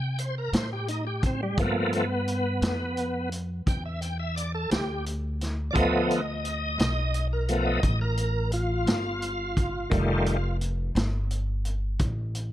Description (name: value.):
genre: slow blues.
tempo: 58 BPM (dotted quarters).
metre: 12/8.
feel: straight.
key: unclear.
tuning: A4 = 442 Hz.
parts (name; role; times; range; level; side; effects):
bright tonewheel organ; sustained chords; 0.0-10.6 s; Eb3 to G5; -28 LUFS; equal; slow rotary speaker, chorus vibrato, plate reverb.
upright bass; bass; 0.0-12.5 s; F1 to C3; -29 LUFS; equal; none.
vintage drum kit; drums; 0.2-12.5 s; hi-hat, kick drum, snare drum; -28 LUFS; equal; none.
room: light reverb.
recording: dark, warm production.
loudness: -25 LUFS.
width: side -13 dB against mid.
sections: 0.0-12.5 A section.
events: tonewheel organ solo 0.0-12.5.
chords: 0.0 C7(no3); 1.6 G7; 9.9 F7.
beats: 0.54 | 1.58 2.62 3.67 4.71 | 5.75 6.79 7.83 8.87 | 9.91 10.95 11.99.